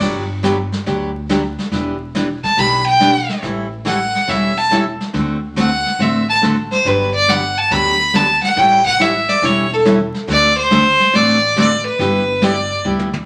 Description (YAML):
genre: country, western swing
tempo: 140 BPM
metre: 4/4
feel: swing 68% on 8ths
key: G major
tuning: A4 = 441 Hz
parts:
  - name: picked steel-string acoustic guitar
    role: accompaniment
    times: 0.0-13.1 s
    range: D3 to A4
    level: -21 LUFS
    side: equal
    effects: none
  - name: upright bass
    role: bass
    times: 0.0-13.3 s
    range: E1 to D2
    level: -29 LUFS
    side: equal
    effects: none
  - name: vintage brush drum kit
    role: drums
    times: 0.0-13.3 s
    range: brushed snare drum, crash cymbal, hi-hat, kick drum, snare drum, toms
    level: -25 LUFS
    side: equal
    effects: none
  - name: clear fiddle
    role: melody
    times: 2.4-12.9 s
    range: A4 to B5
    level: -16 LUFS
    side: equal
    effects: none
room: wet studio reverb, RT60 0.9 s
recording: vinyl crackle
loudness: -15 LUFS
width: mono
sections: 0.0-13.3 A section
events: fiddle solo 0.0-13.3; drum fill 12.9-13.3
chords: 0.0 Gmaj7; 1.7 Em7; 3.4 A7; 5.1 D7; 6.9 Gmaj7; 8.6 A7; 10.3 D7; 12.0 G6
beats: | 0.01 0.43 0.86 1.29 | 1.72 2.15 2.57 3.00 | 3.43 3.86 4.29 4.71 | 5.14 5.57 6.00 6.43 | 6.86 7.28 7.71 8.14 | 8.57 9.00 9.43 9.85 | 10.28 10.71 11.14 11.57 | 11.99 12.42 12.85